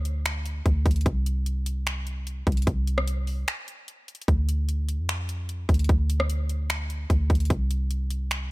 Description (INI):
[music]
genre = hip hop, atmospheric cloud-rap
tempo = 149 BPM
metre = 4/4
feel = half-time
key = D minor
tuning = A4 = 441 Hz
[part]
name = soft 808-style bass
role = bass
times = 0.0-8.5 s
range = C2 to F2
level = -25 LUFS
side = equal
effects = none
[part]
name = trap drum kit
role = drums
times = 0.1-8.4 s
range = finger snaps, hi-hat, kick drum, rim click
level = -27 LUFS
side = equal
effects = overdrive
[sound]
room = little or no reverb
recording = none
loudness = -24 LUFS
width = side -21 dB against mid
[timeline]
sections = 0.0-8.5 A section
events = break 3.5-4.3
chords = none